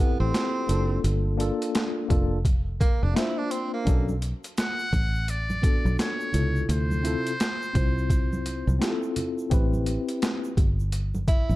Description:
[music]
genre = hip hop, jazz-hop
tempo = 85 BPM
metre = 4/4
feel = swing 62% on 16ths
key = B phrygian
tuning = A4 = 440 Hz
[part]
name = breathy tenor saxophone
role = second line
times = 0.0-4.1, 11.3-11.6 s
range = Bb3 to E4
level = -31 LUFS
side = right 3 dB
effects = none
[part]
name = mellow tine electric piano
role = accompaniment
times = 0.0-10.5 s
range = C3 to C5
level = -29 LUFS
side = left 2 dB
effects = fast stereo tremolo
[part]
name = fingered electric bass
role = bass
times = 0.0-11.6 s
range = F1 to D2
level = -26 LUFS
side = equal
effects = none
[part]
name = boom bap sampler-style drum kit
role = drums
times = 0.3-11.5 s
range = hi-hat, kick drum, snare drum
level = -25 LUFS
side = equal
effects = overdrive
[part]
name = tube shaker and congas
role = percussion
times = 3.9-11.6 s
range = none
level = -37 LUFS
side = right 2 dB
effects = none
[part]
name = trumpet with metal mute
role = melody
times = 4.6-8.8 s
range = C5 to F#5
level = -31 LUFS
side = equal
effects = none
[sound]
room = little or no reverb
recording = none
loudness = -23 LUFS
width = side -17 dB against mid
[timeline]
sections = 0.0-11.6 A section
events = none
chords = 0.0 Am7; 1.0 Gm9; 3.9 Bm9; 6.7 Dm9; 9.5 Am9

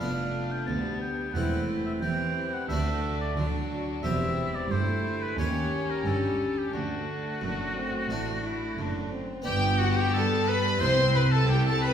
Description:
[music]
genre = classical, baroque-style concerto movement with solo episodes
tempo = 89 BPM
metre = 4/4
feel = straight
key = G major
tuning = A4 = 440 Hz
[part]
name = clear oboe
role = melody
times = 0.0-11.9 s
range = F#4 to A5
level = -33 LUFS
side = left 1 dB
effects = none
[part]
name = rich chamber violin section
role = melody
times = 0.0-11.9 s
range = D4 to C6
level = -35 LUFS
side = left 2 dB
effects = none
[part]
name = rich chamber violin section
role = second line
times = 0.0-11.9 s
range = B3 to C5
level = -32 LUFS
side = left 2 dB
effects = none
[part]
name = harpsichord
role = accompaniment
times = 0.0-11.9 s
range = C2 to G4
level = -36 LUFS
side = equal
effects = none
[part]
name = rich chamber viola section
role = accompaniment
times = 0.0-11.9 s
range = F#3 to C4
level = -35 LUFS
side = equal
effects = none
[part]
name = dark chamber cello section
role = bass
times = 0.0-11.9 s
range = C2 to G3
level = -33 LUFS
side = right 2 dB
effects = none
[part]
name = rich chamber double bass section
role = bass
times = 0.0-11.9 s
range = E1 to G2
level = -31 LUFS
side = right 2 dB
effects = none
[sound]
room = wet recital hall reverb, RT60 1.6 s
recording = recorded in a church or concert hall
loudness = -25 LUFS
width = side -8 dB against mid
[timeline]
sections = 0.0-9.5 A section; 9.5-11.9 B section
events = none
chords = 0.0 G7/F; 1.4 C/E; 2.7 D; 4.0 C/E; 5.4 Eb7; 6.7 D; 9.5 G; 10.8 C

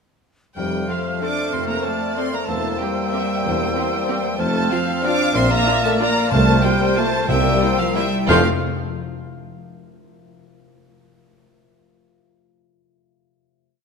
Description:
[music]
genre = classical, orchestral ballroom waltz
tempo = 186 BPM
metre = 3/4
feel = uneven beats, rubato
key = F major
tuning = A4 = 440 Hz
[part]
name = clear chamber violin section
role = melody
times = 0.6-8.5 s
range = F5 to D6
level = -25 LUFS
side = right 2 dB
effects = none
[part]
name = hollow concert flute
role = second line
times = 0.6-8.5 s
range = E6 to F6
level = -27 LUFS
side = equal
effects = none
[part]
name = mellow clarinet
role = second line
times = 0.6-8.4 s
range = C5 to D5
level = -29 LUFS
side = left 2 dB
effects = none
[part]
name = warm bassoon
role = accompaniment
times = 0.6-8.4 s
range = A3 to C4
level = -29 LUFS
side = right 3 dB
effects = none
[part]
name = mellow French horn section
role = sustained chords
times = 0.6-8.4 s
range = F3 to F4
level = -25 LUFS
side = left 3 dB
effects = none
[part]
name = concert harp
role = arpeggios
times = 0.6-8.5 s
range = E2 to F5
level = -29 LUFS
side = left 9 dB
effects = none
[part]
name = rich studio cello section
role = bass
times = 0.6-8.5 s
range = F3 to D4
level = -27 LUFS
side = right 2 dB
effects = none
[part]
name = rich studio double bass section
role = bass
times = 0.6-8.5 s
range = F1 to F2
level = -27 LUFS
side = right 3 dB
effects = none
[part]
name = warm tuba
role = bass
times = 0.6-8.4 s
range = E1 to C2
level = -29 LUFS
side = right 6 dB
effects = none
[part]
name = clear chamber violin section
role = second line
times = 0.9-8.5 s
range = C4 to F5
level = -27 LUFS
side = left 4 dB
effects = none
[part]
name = rich studio viola section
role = accompaniment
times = 0.9-8.5 s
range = F3 to A4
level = -28 LUFS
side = right 2 dB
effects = none
[part]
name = timpani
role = percussion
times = 6.3-8.4 s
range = F2 to C3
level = -25 LUFS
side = left 1 dB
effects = none
[sound]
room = moderate scoring stage reverb, RT60 2.0 s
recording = none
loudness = -17 LUFS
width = side -5 dB against mid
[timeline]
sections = 0.6-8.3 A section; 8.3-9.3 final chord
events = none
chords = 0.6 F; 2.5 C7/E; 4.4 F; 5.3 Bb; 6.3 C7sus4; 7.3 C7; 8.3 F

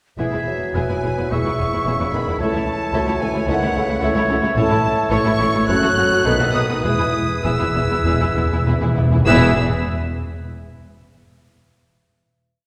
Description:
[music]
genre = classical, dramatic, fast romantic movement for symphony orchestra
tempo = 98-112 BPM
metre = 4/4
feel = rubato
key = E major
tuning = A4 = 440 Hz
[part]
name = rich studio violin section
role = melody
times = 0.2-9.6 s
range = E5 to F#6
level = -30 LUFS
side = equal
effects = none
[part]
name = bright concert flute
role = second line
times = 0.2-9.6 s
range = E5 to F#6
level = -28 LUFS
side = equal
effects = none
[part]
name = clear clarinet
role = second line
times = 0.2-9.5 s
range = G#4 to B4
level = -32 LUFS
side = equal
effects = none
[part]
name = warm oboe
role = second line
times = 0.2-9.5 s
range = G#4 to E5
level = -29 LUFS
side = equal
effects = none
[part]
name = warm symphonic violin section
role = second line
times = 0.2-9.6 s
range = B3 to E5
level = -32 LUFS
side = equal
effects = none
[part]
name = dark symphonic viola section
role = accompaniment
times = 0.2-9.6 s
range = A3 to F#4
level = -28 LUFS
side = equal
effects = none
[part]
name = mellow bassoon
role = accompaniment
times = 0.2-9.5 s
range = C#3 to F#3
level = -28 LUFS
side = equal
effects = none
[part]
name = dark French horn section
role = sustained chords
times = 0.2-9.5 s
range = G#3 to E4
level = -32 LUFS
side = equal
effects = none
[part]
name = clear studio cello section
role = bass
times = 0.2-9.6 s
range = C#2 to B2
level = -28 LUFS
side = equal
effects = none
[part]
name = clear symphonic double bass section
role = bass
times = 0.2-9.6 s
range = E1 to C#2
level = -28 LUFS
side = equal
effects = none
[part]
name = timpani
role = percussion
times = 0.2-1.0, 6.8-9.5 s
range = E2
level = -24 LUFS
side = equal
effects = none
[sound]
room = wet concert hall reverb, RT60 2.2 s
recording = heard from further back in the room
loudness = -19 LUFS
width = mono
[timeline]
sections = 0.2-9.3 A section; 9.3-11.6 final chord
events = slowing down 3.5-9.3; timpani fill 6.8-9.3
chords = 0.2 E; 2.4 A/C#; 4.6 A; 5.7 F#m; 6.2 B7; 6.8 E

